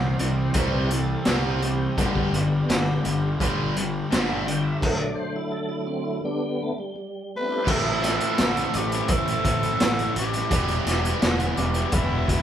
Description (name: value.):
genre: classic rock.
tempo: 84 BPM.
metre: 4/4.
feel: straight.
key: A minor.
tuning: A4 = 442 Hz.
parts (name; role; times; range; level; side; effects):
tonewheel organ; sustained chords; 0.0-12.4 s; D3 to G5; -31 LUFS; equal; overdrive, chorus vibrato, slow rotary speaker.
crunchy overdriven guitar; riff; 0.0-12.4 s; G2 to E4; -31 LUFS; right 6 dB; none.
overdriven electric guitar; riff; 0.0-12.4 s; E2 to E4; -29 LUFS; left 5 dB; none.
overdriven electric guitar; riff; 0.0-12.4 s; E2 to C4; -32 LUFS; equal; none.
fuzz fingered electric bass; bass; 0.0-12.4 s; E1 to C2; -28 LUFS; equal; overdrive.
raw garage drum kit; drums; 0.2-12.4 s; crash cymbal, hi-hat, kick drum, snare drum; -25 LUFS; equal; none.
growling tenor saxophone; melody; 7.4-12.4 s; E4 to B4; -28 LUFS; right 1 dB; none.
room: moderate large studio reverb, RT60 0.9 s.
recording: band playing live in one room.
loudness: -21 LUFS.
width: side -10 dB against mid.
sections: 0.0-7.7 A section; 7.7-12.4 B section.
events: tonewheel organ solo 0.0-7.7; stop 4.8-7.7.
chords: 0.0 C; 2.0 G; 4.8 D; 6.3 G; 7.7 Am; 10.5 Em.